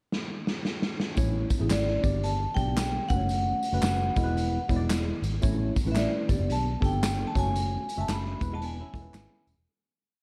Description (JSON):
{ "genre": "uptempo 1960s-style soul", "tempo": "113 BPM", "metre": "4/4", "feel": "swing 62% on 8ths", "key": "A major", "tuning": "A4 = 439 Hz", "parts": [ { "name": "raw garage drum kit", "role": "drums", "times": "0.1-9.6 s", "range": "hi-hat, kick drum, snare drum", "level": "-32 LUFS", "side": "equal", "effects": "none" }, { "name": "barky tine electric piano", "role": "accompaniment", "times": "1.2-9.4 s", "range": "G#3 to E5", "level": "-35 LUFS", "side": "equal", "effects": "lush chorus" }, { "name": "vintage muted fingered electric bass", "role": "bass", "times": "1.2-9.6 s", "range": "E1 to B1", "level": "-32 LUFS", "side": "equal", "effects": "none" }, { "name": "tambourine and handclaps", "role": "percussion", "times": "1.2-9.6 s", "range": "none", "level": "-43 LUFS", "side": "equal", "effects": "none" }, { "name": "vibraphone with medium hard mallets", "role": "melody", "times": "1.7-9.4 s", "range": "D5 to B5", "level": "-34 LUFS", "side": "equal", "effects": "none" }, { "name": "clean electric guitar", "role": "riff", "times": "8.5-9.5 s", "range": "G#3 to E4", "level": "-47 LUFS", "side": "equal", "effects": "none" } ], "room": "light reverb, studio reverb", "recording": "dark, warm production", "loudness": "-28 LUFS", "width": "mono", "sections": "0.0-1.2 pickup bar; 1.2-9.7 verse", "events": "drum fill 0.1-1.2; fade-out 7.6-9.7", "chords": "0.0 N.C.; 1.2 A; 2.0 G; 3.0 F#m; 4.1 E; 5.4 A; 6.2 G; 7.3 F#m; 8.3 E" }